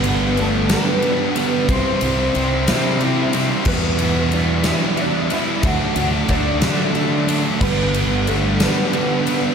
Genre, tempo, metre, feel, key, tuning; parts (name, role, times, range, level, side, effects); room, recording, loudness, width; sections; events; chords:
quiet-loud alternative rock; 61 BPM (dotted quarters); 6/8; straight; A4 = 440 Hz
electric guitar through a small old amp; melody; 0.0-9.5 s; A3 to F#5; -23 LUFS; right 1 dB; ensemble chorus, slapback echo
scooped high-gain guitar; riff; 0.0-9.5 s; E2 to D4; -25 LUFS; left 9 dB; distortion
thick fuzz guitar; riff; 0.0-9.5 s; G2 to E4; -23 LUFS; right 10 dB; distortion, slapback echo
thick fuzz guitar; riff; 0.0-9.5 s; E2 to D4; -27 LUFS; equal
fuzz fingered electric bass; bass; 0.0-8.7 s; G1 to D3; -22 LUFS; equal; overdrive
huge arena drum kit; drums; 0.0-9.4 s; crash cymbal, kick drum, ride cymbal, snare drum; -22 LUFS; left 1 dB
moderate lush hall reverb, RT60 2.8 s; big arena sound; -16 LUFS; side -6 dB against mid
0.0-9.5 A section
0.0 G; 1.7 C; 3.7 Em; 5.6 D; 7.6 G